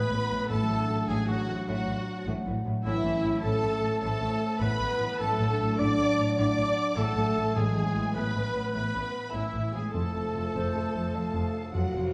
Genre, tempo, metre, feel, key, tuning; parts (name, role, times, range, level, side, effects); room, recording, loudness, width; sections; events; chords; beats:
cinematic; 102 BPM (dotted quarters); 12/8; straight; A4 = 440 Hz
warm symphonic violin section; melody; 0.0-12.1 s; E5 to D6; -38 LUFS; equal
warm clarinet; second line; 0.0-11.7 s; E4 to D5; -39 LUFS; equal
warm oboe; second line; 0.0-11.7 s; E4 to D5; -40 LUFS; equal
warm symphonic violin section; second line; 0.0-11.7 s; E4 to D5; -43 LUFS; equal
warm symphonic viola section; accompaniment; 0.0-11.7 s; E4 to D5; -39 LUFS; equal
dark French horn section; sustained chords; 0.0-12.1 s; E3 to F#4; -35 LUFS; equal
concert harp; arpeggios; 0.0-12.1 s; F2 to A5; -38 LUFS; equal
warm symphonic cello section; bass; 0.1-12.1 s; F2 to F#3; -37 LUFS; equal
warm symphonic double bass section; bass; 0.1-12.0 s; F1 to A1; -36 LUFS; equal
timpani; percussion; 0.5-1.0, 7.6-8.1 s; A2; -38 LUFS; equal
mellow hollow silver concert flute; second line; 10.5-12.1 s; C5 to F5; -42 LUFS; equal
wet scoring stage reverb, RT60 1.5 s; small room ambience; -28 LUFS; mono
0.0-12.1 A section
0.5 D/A; 2.9 A; 5.2 D/A; 7.6 E/A; 9.9 F7
| 0.50 1.09 1.68 2.27 | 2.85 3.44 4.03 4.62 | 5.20 5.79 6.38 6.97 | 7.56 8.15 8.74 9.34 | 9.94 10.54 11.15 11.75